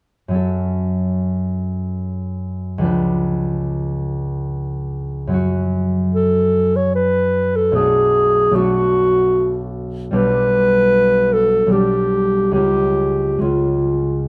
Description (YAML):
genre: classical, romantic duo for clarinet and harp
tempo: 74 BPM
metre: 3/4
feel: uneven beats, rubato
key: F# minor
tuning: A4 = 440 Hz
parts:
  - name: concert harp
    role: accompaniment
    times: 0.3-14.3 s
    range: B1 to B4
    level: -21 LUFS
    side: equal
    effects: none
  - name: mellow clarinet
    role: melody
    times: 6.1-14.3 s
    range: E#4 to C#5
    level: -18 LUFS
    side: equal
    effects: none
room: moderate recital hall reverb, RT60 1.3 s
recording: close, detailed microphones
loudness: -18 LUFS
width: mono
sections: 0.3-5.3 A section; 5.3-14.3 B section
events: none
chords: 0.3 F#m; 2.8 C#7b9; 5.3 F#5; 7.8 Bm7; 10.1 G/B; 12.5 C#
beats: | 0.32 1.18 2.03 | 2.82 3.59 4.41 | 5.31 6.15 6.96 | 7.76 8.55 9.34 | 10.13 10.93 11.71 | 12.54 13.41 14.27